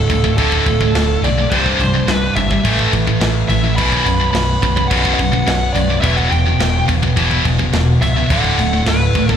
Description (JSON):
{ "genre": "heavy metal", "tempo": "106 BPM", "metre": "4/4", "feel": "straight", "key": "B phrygian", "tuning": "A4 = 439 Hz", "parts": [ { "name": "high-gain lead guitar", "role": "melody", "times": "0.0-9.4 s", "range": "A4 to B5", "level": "-21 LUFS", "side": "right 1 dB", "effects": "distortion, slapback echo, digital delay" }, { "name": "pipe organ, cornet", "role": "sustained chords", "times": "0.0-9.4 s", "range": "C3 to B4", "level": "-27 LUFS", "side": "equal", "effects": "none" }, { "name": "heavy high-gain guitar", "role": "riff", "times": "0.0-9.4 s", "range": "B1 to A3", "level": "-16 LUFS", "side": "equal", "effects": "distortion" }, { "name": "overdriven picked electric bass", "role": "bass", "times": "0.1-9.3 s", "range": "B0 to A1", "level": "-18 LUFS", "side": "equal", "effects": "none" }, { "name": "tight metal drum kit", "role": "drums", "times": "0.1-9.4 s", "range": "crash cymbal, kick drum, snare drum", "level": "-21 LUFS", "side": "left 1 dB", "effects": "none" } ], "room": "studio reverb", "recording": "live gig heard through the venue's PA, club reverb", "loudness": "-13 LUFS", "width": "side -8 dB against mid", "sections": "0.0-9.4 A section", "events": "none", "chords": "0.0 D5; 1.5 C5; 2.6 A5; 3.8 B5; 6.0 Em; 8.3 D", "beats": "0.38 0.95 | 1.51 2.08 2.65 3.21 | 3.78 4.34 4.91 5.48 | 6.04 6.61 7.17 7.74 | 8.30 8.87" }